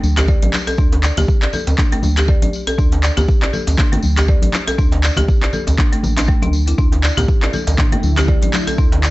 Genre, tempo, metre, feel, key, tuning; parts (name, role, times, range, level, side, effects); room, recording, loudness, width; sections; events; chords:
afro house; 120 BPM; 4/4; swing 56% on 16ths; A4 = 441 Hz
warm sub bass; bass; 0.0-9.1 s; A1 to D2; -17 LUFS; equal; sidechain pumping
congas; percussion; 0.0-8.6 s; -24 LUFS; left 2 dB
tambourine; percussion; 0.0-9.1 s; -32 LUFS; left 2 dB
folk marimba with hard mallets; arpeggios; 0.2-9.1 s; A3 to D5; -22 LUFS; left 1 dB; sidechain pumping, dub echo
afro-pop drum kit; drums; 0.2-9.1 s; handclaps, hi-hat, toms; -22 LUFS; equal; overdrive
djembe; percussion; 0.2-9.0 s; -26 LUFS; right 1 dB
electronic kick drum; drums; 0.3-8.9 s; -15 LUFS; equal; overdrive
ethereal airy pad; sustained chords; 7.4-9.1 s; D3 to E4; -27 LUFS; equal; ensemble chorus, built-in reverb, sidechain pumping
small room ambience; nothing above 7.9 kHz; -13 LUFS; side -19 dB against mid
0.0-9.1 A section
0.0 A5